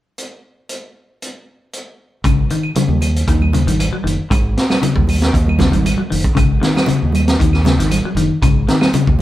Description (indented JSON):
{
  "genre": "afrobeat",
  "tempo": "116 BPM",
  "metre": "4/4",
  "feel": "straight",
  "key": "unclear",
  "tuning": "A4 = 440 Hz",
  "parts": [
    { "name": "vintage drum kit", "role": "drums", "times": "0.2-9.2 s", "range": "hi-hat, kick drum, snare drum", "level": "-17 LUFS", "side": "equal", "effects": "none" },
    { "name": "fingered electric bass", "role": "bass", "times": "2.2-9.2 s", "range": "F#1 to D#2", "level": "-17 LUFS", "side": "equal", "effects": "none" },
    { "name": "claves", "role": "percussion", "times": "2.2-8.9 s", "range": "none", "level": "-30 LUFS", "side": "right 2 dB", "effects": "none" },
    { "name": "semi-hollow electric guitar", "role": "arpeggios", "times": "2.3-9.1 s", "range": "C#3 to F#3", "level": "-18 LUFS", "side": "left 4 dB", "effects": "none" },
    { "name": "congas", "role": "percussion", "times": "2.8-9.2 s", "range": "none", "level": "-22 LUFS", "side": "right 4 dB", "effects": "none" }
  ],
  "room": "moderate studio reverb, RT60 0.8 s",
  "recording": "band playing live in one room",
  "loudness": "-13 LUFS",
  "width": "side -14 dB against mid",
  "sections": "0.2-2.2 A section; 2.2-9.2 B section",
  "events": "none",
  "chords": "0.2 N.C.; 2.2 G#5"
}